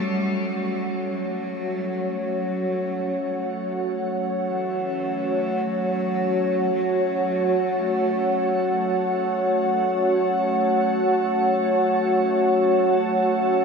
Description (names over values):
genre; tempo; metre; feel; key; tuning
ambient; free time; none; none; unclear; A4 = 440 Hz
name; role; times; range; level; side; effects
clear cello; melody; 0.0-8.7 s; E3 to A3; -31 LUFS; equal; shimmer reverb, ping-pong delay
dark analog pad; sustained chords; 0.0-13.6 s; F#4 to F#5; -21 LUFS; equal; chorus, shimmer reverb
organ-like drone; drone; 0.0-13.6 s; A3; -31 LUFS; equal; ensemble chorus, built-in reverb
room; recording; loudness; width
wet huge ambient reverb, RT60 7.5 s; none; -20 LUFS; side -5 dB against mid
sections
0.0-13.6 A section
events
fade-in on synth drone 0.0-13.6; fade-in on cello 0.0-13.6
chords
0.0 F#m